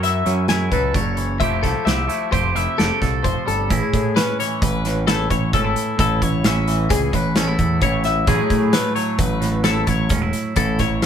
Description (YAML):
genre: math rock and midwest emo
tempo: 131 BPM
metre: 5/4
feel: straight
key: A major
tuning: A4 = 439 Hz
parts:
  - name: twangy electric guitar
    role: accompaniment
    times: 0.0-11.1 s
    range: F#2 to A4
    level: -23 LUFS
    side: right 4 dB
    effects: spring reverb
  - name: twelve-string electric guitar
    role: arpeggios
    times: 0.0-11.1 s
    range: G#4 to G#5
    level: -22 LUFS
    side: left 6 dB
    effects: none
  - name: growling picked electric bass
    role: bass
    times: 0.0-11.1 s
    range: E1 to A2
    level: -22 LUFS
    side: equal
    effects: overdrive
  - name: loose indie drum kit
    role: drums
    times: 0.0-11.1 s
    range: hi-hat, kick drum, snare drum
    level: -22 LUFS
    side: right 1 dB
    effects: none
room: light reverb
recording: band playing live in one room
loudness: -17 LUFS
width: side -8 dB against mid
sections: 0.0-3.7 A section; 3.7-11.1 B section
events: none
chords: 0.0 Dmaj9/F#; 1.4 Fmaj9; 3.7 Amaj7; 8.3 F#m9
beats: 0.03 0.49 0.95 | 1.41 1.87 2.33 2.78 3.24 | 3.70 4.16 4.62 5.07 5.53 | 5.99 6.45 6.90 7.36 7.82 | 8.28 8.74 9.19 9.65 10.11 | 10.57 11.03